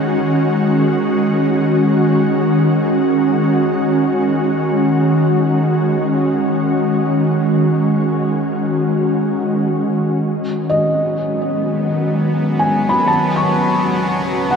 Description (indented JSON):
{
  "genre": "ambient",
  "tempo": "free time",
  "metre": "none",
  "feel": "none",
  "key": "unclear",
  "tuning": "A4 = 438 Hz",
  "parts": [
    { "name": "ethereal airy pad", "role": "sustained chords", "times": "0.0-14.6 s", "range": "D2 to F#4", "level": "-14 LUFS", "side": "equal", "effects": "ensemble chorus, built-in reverb, shimmer reverb" },
    { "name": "bowed-like drone", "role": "drone", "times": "11.3-14.6 s", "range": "F#3 to B3", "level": "-22 LUFS", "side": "equal", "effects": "built-in reverb" },
    { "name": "felt-muted upright piano", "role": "arpeggios", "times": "10.7-14.6 s", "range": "D#5 to C#6", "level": "-18 LUFS", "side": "equal", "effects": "ping-pong delay, shimmer reverb" }
  ],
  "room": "wet huge ambient reverb, RT60 9.0 s",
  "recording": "in a vast, echoing space",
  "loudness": "-14 LUFS",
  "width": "side -6 dB against mid",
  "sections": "0.0-10.2 A section; 10.2-14.6 B section",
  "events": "none",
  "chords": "0.0 G#7sus4/D#; 10.2 B; 13.1 Dmaj7",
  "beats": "free time"
}